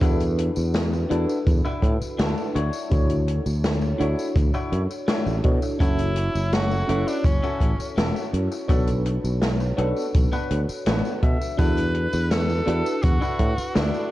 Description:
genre	vaporwave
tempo	83 BPM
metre	4/4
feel	straight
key	unclear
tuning	A4 = 443 Hz
part	mellow FM electric piano	accompaniment	0.0-14.1 s	C#4 to C#5	-28 LUFS	equal	tremolo, analog chorus, tape echo
part	clean electric guitar	riff	0.0-14.0 s	B3 to F#5	-33 LUFS	left 2 dB	wide subtle chorus, tape echo
part	sustaining fretless electric bass	bass	0.0-13.9 s	E1 to B2	-24 LUFS	equal	tube saturation
part	kick drum	drums	0.0-13.5 s	none	-22 LUFS	equal	vintage 12-bit sampler grit
part	open jazz drum kit	drums	0.0-14.1 s	hi-hat, snare drum, tambourine	-28 LUFS	left 1 dB	vintage 12-bit sampler grit, gated reverb
part	edgy tenor saxophone	melody	5.8-14.1 s	C#4 to B4	-29 LUFS	equal	vintage 12-bit sampler grit, tape echo
room	light reverb, studio reverb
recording	cassette tape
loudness	-20 LUFS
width	side -16 dB against mid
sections	0.0-14.1 A section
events	clean electric guitar fill 10.5-11.6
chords	0.0 E9sus4; 2.6 Dmaj9; 5.8 F#m7; 8.7 Bm7; 11.6 E9sus4

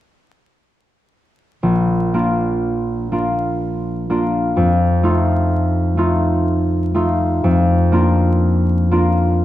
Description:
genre	classical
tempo	62 BPM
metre	3/4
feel	rubato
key	Bb major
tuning	A4 = 440 Hz
part	concert harp	accompaniment	1.6-9.4 s	Bb1 to F4	-14 LUFS	equal	none
room	moderate scoring stage reverb, RT60 1.6 s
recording	vinyl crackle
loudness	-15 LUFS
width	side -14 dB against mid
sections	1.6-9.4 A section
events	none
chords	1.6 Bb; 4.6 F7; 7.4 Bb/F

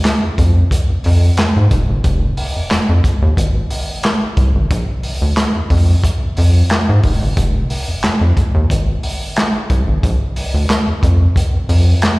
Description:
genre	funk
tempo	90 BPM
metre	4/4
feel	straight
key	F dorian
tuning	A4 = 440 Hz
part	crunchy breakbeat drum kit	drums	0.1-12.2 s	handclaps, hi-hat, kick drum, snare drum	-16 LUFS	equal	none
part	rubbery square bass	bass	0.2-11.9 s	F1 to Ab2	-12 LUFS	equal	none
room	little or no reverb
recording	live gig heard through the venue's PA, recital hall reverb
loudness	-12 LUFS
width	side -22 dB against mid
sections	0.0-12.2 A section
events	none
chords	none

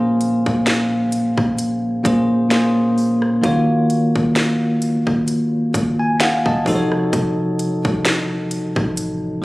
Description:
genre	contemporary R&B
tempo	65 BPM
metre	4/4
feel	swing 54% on 16ths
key	Bb minor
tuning	A4 = 440 Hz
part	bell-like tine electric piano	accompaniment	0.0-9.4 s	Bb2 to A5	-17 LUFS	equal	medium stereo tremolo
part	clean 808-style bass	bass	0.0-9.4 s	Db1 to Bb1	-33 LUFS	equal	none
part	trap drum kit	drums	0.2-9.2 s	hi-hat, kick drum, rim click, snare drum	-21 LUFS	equal	none
room	light reverb, digital ambience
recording	recorded on a phone in the room, studio reverb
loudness	-16 LUFS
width	side -20 dB against mid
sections	0.0-9.4 A section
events	tine electric piano fill 5.7-7.1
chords	0.0 Bbm9; 3.4 Ebm9; 6.7 F7b9b13

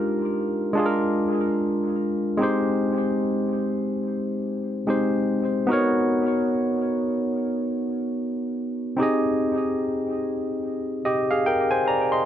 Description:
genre	reggae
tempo	73 BPM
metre	4/4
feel	swing 60% on 16ths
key	unclear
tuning	A4 = 439 Hz
part	barky tine electric piano	solo	0.0-12.3 s	Ab3 to C6	-22 LUFS	equal	tape echo
room	light reverb, digital ambience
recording	none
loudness	-22 LUFS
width	side -10 dB against mid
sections	0.0-2.4 A section; 2.4-12.3 B section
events	none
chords	0.0 Fm11; 0.8 Bb7; 2.4 Abmaj7; 5.7 Bmaj9; 9.0 Abmaj7

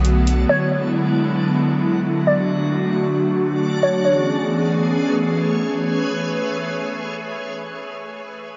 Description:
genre	hip hop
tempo	free time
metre	none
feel	none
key	A major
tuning	A4 = 442 Hz
part	glassy wavetable pluck	melody	0.0-5.3 s	C#5 to D5	-24 LUFS	equal	chorus, low-pass filter, digital delay
part	airy breathy pad	sustained chords	0.0-7.4 s	D3 to G#4	-22 LUFS	equal	chorus, low-pass filter
part	soft 808-style bass	bass	0.0-0.5 s	B1	-19 LUFS	equal	none
part	backwards swelling texture	texture	0.0-7.4 s	E2 to D5	-29 LUFS	equal	built-in reverb
room	moderate shimmer reverb, RT60 4.5 s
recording	nothing above 7.8 kHz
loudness	-20 LUFS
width	mono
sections	0.0-4.0 A section; 4.0-7.6 B section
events	none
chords	0.5 E9; 2.3 D; 4.0 Amaj9

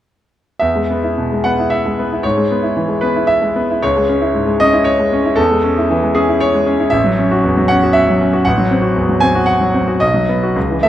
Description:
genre	classical, romantic character piece for solo piano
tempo	115 BPM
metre	3/4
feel	uneven beats, rubato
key	E major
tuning	A4 = 440 Hz
part	bright grand piano	solo	0.6-10.9 s	A1 to G#5	-12 LUFS	equal	none
room	moderate recital hall reverb, RT60 1.6 s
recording	dark, warm production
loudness	-12 LUFS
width	side -12 dB against mid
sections	0.6-10.9 A section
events	none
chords	0.6 E; 2.2 E/G#; 3.8 C#m; 5.4 C#m/E; 6.9 F#m7/A; 8.5 F#m7b5/A; 10.0 B

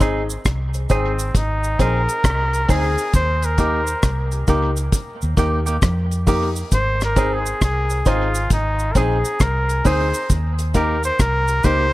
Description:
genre	roots reggae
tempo	67 BPM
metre	4/4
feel	swing 65% on 16ths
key	Ab major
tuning	A4 = 440 Hz
part	clean electric guitar	accompaniment	0.0-11.9 s	Bb3 to Ab4	-26 LUFS	right 3 dB	tape echo
part	dark upright piano	stabs	0.0-11.9 s	Eb4 to C5	-25 LUFS	left 3 dB	none
part	vintage muted fingered electric bass	bass	0.0-11.9 s	Ab1 to F2	-21 LUFS	equal	none
part	deep reggae drum kit	drums	0.0-11.9 s	hi-hat, kick drum, rim click	-19 LUFS	equal	none
part	cabasa	percussion	0.0-11.9 s	none	-32 LUFS	right 5 dB	none
part	clear flugelhorn	melody	0.9-11.9 s	C4 to C5	-22 LUFS	equal	tape echo
room	light reverb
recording	none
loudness	-17 LUFS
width	side -17 dB against mid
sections	0.0-11.9 A section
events	flugelhorn solo 0.0-11.9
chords	0.0 Ab; 3.1 Eb; 6.7 Ab; 10.3 Eb

